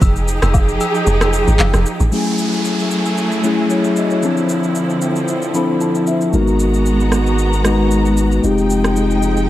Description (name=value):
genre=amapiano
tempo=114 BPM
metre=4/4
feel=swing 55% on 16ths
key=unclear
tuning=A4 = 440 Hz
part: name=rich studio string section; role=sustained chords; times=0.0-9.5 s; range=D3 to A#5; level=-20 LUFS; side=right 2 dB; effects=sidechain pumping
part: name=deep log drum bass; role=bass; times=0.0-2.1 s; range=F1 to A1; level=-15 LUFS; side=equal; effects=none
part: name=afro-pop drum kit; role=drums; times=0.0-9.5 s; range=handclaps, kick drum, rim click, shaker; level=-21 LUFS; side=equal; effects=overdrive, vintage 12-bit sampler grit
part: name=agogo bells and woodblock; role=percussion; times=0.0-1.7 s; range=none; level=-26 LUFS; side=left 6 dB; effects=none
part: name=mellow tine electric piano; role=accompaniment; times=2.1-9.5 s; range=F3 to B5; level=-16 LUFS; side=left 2 dB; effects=lush chorus
part: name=downlifter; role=sound effects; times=2.1-6.3 s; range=none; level=-27 LUFS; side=right 1 dB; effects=none
part: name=punchy sub bass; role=bass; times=6.3-9.5 s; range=F1 to G#1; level=-17 LUFS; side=equal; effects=none
room=light reverb, digital ambience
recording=none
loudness=-13 LUFS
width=side -14 dB against mid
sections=0.0-2.1 A section; 2.1-9.5 B section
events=drop 0.0-2.1; kick muted 1.1-2.1; tine electric piano fill 5.3-6.3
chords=0.0 Fm9; 2.1 F#m9; 4.2 Dm9; 6.3 G#m9; 8.4 Fm9